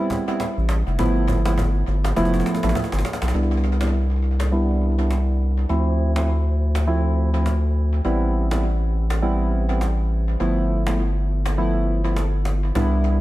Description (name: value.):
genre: afrobeats.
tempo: 102 BPM.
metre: 4/4.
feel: swing 58% on 16ths.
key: C major.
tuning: A4 = 443 Hz.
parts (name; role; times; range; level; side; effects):
soft electric-piano-like synth keys; accompaniment; 0.0-13.2 s; F3 to E4; -24 LUFS; right 1 dB; chorus, low-pass filter, tape echo.
cajon; drums; 0.1-12.9 s; none; -31 LUFS; equal; tape echo.
saturated sub bass; bass; 0.6-13.2 s; F1 to D2; -20 LUFS; equal; none.
room: little or no reverb.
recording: echo-heavy mix.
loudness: -19 LUFS.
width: side -16 dB against mid.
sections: 0.0-3.3 A section; 3.3-12.8 B section.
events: drum fill 2.2-3.3; filter sweep on synth keys 3.3-12.8; hi-hats muted 12.8-13.2.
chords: 0.0 Am7; 1.0 G13; 3.3 Cmaj7; 5.7 Dm9; 8.0 Am7; 10.4 G13.